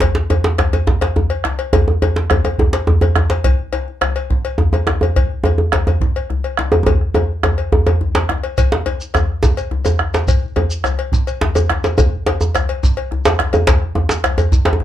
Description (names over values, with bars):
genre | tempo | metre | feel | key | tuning
west african traditional, West African drum ensemble | 141 BPM (dotted quarters) | 12/8 | straight | none | none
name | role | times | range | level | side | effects
bombo | percussion | 0.0-14.8 s | none | -18 LUFS | right 2 dB | none
cowbell | percussion | 0.0-14.8 s | none | -24 LUFS | left 9 dB | none
djembe | percussion | 0.0-14.8 s | none | -22 LUFS | left 3 dB | none
djembe | percussion | 0.0-14.8 s | none | -16 LUFS | right 1 dB | none
shekere | percussion | 8.6-14.7 s | none | -24 LUFS | right 1 dB | none
room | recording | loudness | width
wet small room reverb, RT60 0.5 s | dark, warm production | -14 LUFS | side -12 dB against mid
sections
0.0-8.6 A section; 8.6-14.8 B section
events
drum fill 6.9-8.6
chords
none